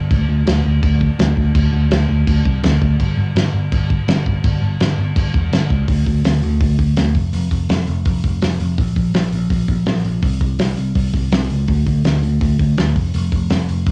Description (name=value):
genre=punk rock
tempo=166 BPM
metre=4/4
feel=straight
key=unclear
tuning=A4 = 440 Hz
part: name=picked electric bass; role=bass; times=0.0-13.9 s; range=E1 to D2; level=-19 LUFS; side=equal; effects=none
part: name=loose indie drum kit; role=drums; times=0.1-13.9 s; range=crash cymbal, hi-hat, kick drum, snare drum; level=-21 LUFS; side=equal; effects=cassette tape
room=little or no reverb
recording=home recording on cassette, small room ambience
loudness=-17 LUFS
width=mono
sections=0.0-5.9 A section; 5.9-13.9 B section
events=none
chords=none